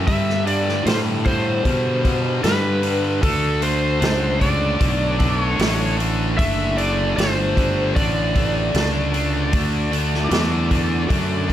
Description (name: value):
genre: blues rock power trio and southern rock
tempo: 76 BPM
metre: 4/4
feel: straight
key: unclear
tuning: A4 = 441 Hz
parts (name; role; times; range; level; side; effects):
- distorted electric guitar; riff; 0.0-11.5 s; G2 to D4; -23 LUFS; equal; overdrive
- fuzz fingered electric bass; bass; 0.0-11.5 s; F#1 to B2; -22 LUFS; equal; overdrive
- overdriven slide guitar; melody; 0.1-11.5 s; A4 to E5; -24 LUFS; equal; none
- vintage drum kit; drums; 0.1-11.5 s; hi-hat, kick drum, snare drum; -23 LUFS; equal; none
room: light reverb, small room ambience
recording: none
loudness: -17 LUFS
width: side -11 dB against mid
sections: 0.0-11.5 A section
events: none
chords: 0.1 G; 3.2 D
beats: | 0.07 0.86 1.65 2.44 | 3.23 4.02 4.80 5.59 | 6.38 7.17 7.96 8.74 | 9.53 10.31 11.10